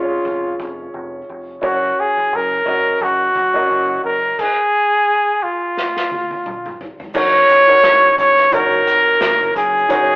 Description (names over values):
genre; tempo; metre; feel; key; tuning
piano-driven pop; 87 BPM; 4/4; swing 56% on 16ths; F# major; A4 = 441 Hz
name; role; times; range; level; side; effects
breathy trumpet; melody; 0.0-10.2 s; E#4 to C#5; -13 LUFS; equal; none
warm grand piano; accompaniment; 0.0-10.2 s; C#4 to D#5; -22 LUFS; equal; none
deep dub fingered electric bass; bass; 0.0-10.2 s; E#1 to F#1; -32 LUFS; equal; none
unplugged drum kit; drums; 0.3-10.1 s; crash cymbal, hi-hat, kick drum, snare drum, toms; -25 LUFS; equal; none
tube shaker; percussion; 7.1-10.2 s; none; -56 LUFS; left 1 dB; none
room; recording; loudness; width
wet stone room reverb, RT60 1.0 s; rough rehearsal-room recording, warm saturation, telephone sound; -12 LUFS; side -24 dB against mid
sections
0.0-7.1 A section; 7.1-10.2 B section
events
drum fill 5.8-7.1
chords
0.0 C#/E#; 1.6 F#; 4.4 N.C.; 7.1 F#6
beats
0.25 0.94 | 1.63 2.32 3.01 3.70 | 4.39 5.08 5.77 6.46 | 7.15 7.84 8.53 9.22 | 9.91